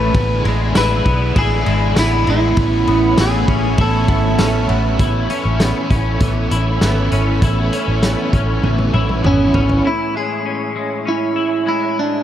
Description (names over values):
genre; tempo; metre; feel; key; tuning
dream pop; 99 BPM; 4/4; straight; A major; A4 = 440 Hz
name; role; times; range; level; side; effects
clean electric guitar; melody; 0.0-4.7, 9.3-12.2 s; C#4 to B4; -19 LUFS; right 1 dB; tape echo
crunchy overdriven guitar; accompaniment; 0.0-9.9 s; A2 to E4; -23 LUFS; right 3 dB; tremolo, ensemble chorus
string machine, cellos; sustained chords; 0.0-12.2 s; A3 to C#6; -25 LUFS; equal; ensemble chorus
clean electric guitar; arpeggios; 0.0-12.2 s; A2 to E4; -24 LUFS; left 5 dB; ensemble chorus, tape echo
vintage muted fingered electric bass; bass; 0.0-9.8 s; G#1 to B1; -18 LUFS; equal; none
loose indie drum kit; drums; 0.1-9.8 s; hi-hat, kick drum, ride cymbal, snare drum, tambourine, toms; -20 LUFS; equal; none
room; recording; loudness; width
light reverb; none; -14 LUFS; side -11 dB against mid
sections
0.0-5.0 A section; 5.0-9.8 B section; 9.8-12.2 C section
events
drum fill 8.6-9.8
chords
0.1 E7/A; 2.6 Aadd9; 9.8 Amaj7